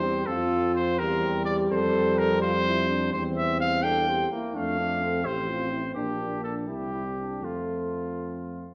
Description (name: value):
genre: classical, brass quintet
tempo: 84 BPM (dotted quarters)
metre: 6/8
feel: rubato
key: F major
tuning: A4 = 441 Hz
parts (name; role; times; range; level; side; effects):
- warm trumpet; melody; 0.0-8.7 s; F4 to G5; -31 LUFS; equal; none
- mellow flugelhorn; second line; 0.0-8.7 s; A3 to E4; -39 LUFS; equal; none
- mellow French horn; accompaniment; 0.0-8.6 s; C4 to A4; -33 LUFS; equal; none
- mellow trombone; accompaniment; 0.0-8.7 s; F3 to C4; -35 LUFS; equal; none
- mellow tuba; bass; 0.0-8.7 s; A1 to F2; -34 LUFS; equal; none
room: wet recital hall reverb, RT60 1.5 s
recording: dark, warm production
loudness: -27 LUFS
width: mono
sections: 0.0-8.7 A section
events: none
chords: 0.3 F; 1.0 C7/E; 1.7 F; 3.1 C/E; 4.5 F; 6.0 Gm/Bb; 6.7 C; 7.4 F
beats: | 0.28 1.00 | 1.71 2.42 | 3.13 3.84 | 4.54 5.25 | 5.96 6.69 | 7.43 8.18